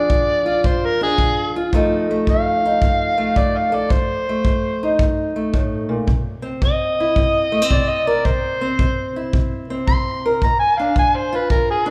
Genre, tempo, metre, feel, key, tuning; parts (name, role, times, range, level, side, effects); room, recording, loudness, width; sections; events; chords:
acoustic country blues, solo or duo; 110 BPM; 4/4; swing 65% on 8ths; F mixolydian; A4 = 438 Hz
overdriven harmonica; melody; 0.0-11.9 s; Ab4 to C6; -21 LUFS; equal
fingerpicked steel-string acoustic guitar; accompaniment; 0.0-11.9 s; F2 to Bb4; -24 LUFS; equal
kick drum; drums; 0.1-11.7 s; -23 LUFS; equal
moderate recital hall reverb, RT60 1.8 s; recorded in a church or concert hall; -19 LUFS; mono
0.0-11.9 A section
0.0 Bb7; 1.7 F7; 6.1 C; 10.4 Bb7